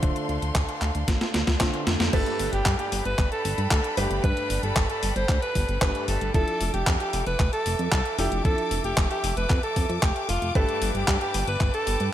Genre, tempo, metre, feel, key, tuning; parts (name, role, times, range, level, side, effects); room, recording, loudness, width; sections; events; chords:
italo disco; 114 BPM; 4/4; straight; A4 = 442 Hz
rich studio string section; sustained chords; 0.0-12.1 s; A4 to D6; -34 LUFS; equal
bright grand piano; stabs; 0.0-12.1 s; G2 to C5; -33 LUFS; right 1 dB
chorused synth bass; bass; 0.0-12.1 s; D1 to G2; -28 LUFS; equal; tube saturation
clean 12-bit digital drum machine; drums; 0.0-12.1 s; crash cymbal, handclaps, hi-hat, snare drum; -28 LUFS; equal; overdrive, studio ambience, gated reverb
electronic kick drum; drums; 0.0-11.7 s; -24 LUFS; equal; overdrive, studio ambience
breathy alto saxophone; melody; 2.1-12.1 s; F4 to C5; -28 LUFS; right 1 dB; ping-pong delay
light reverb, studio reverb; -22 LUFS; side -12 dB against mid
0.0-2.1 A section; 2.1-12.1 B section
drum fill 1.1-2.1; band accent 2.0
0.0 Dm7; 2.1 Gadd9; 6.3 Dmadd9/F; 10.6 Gadd9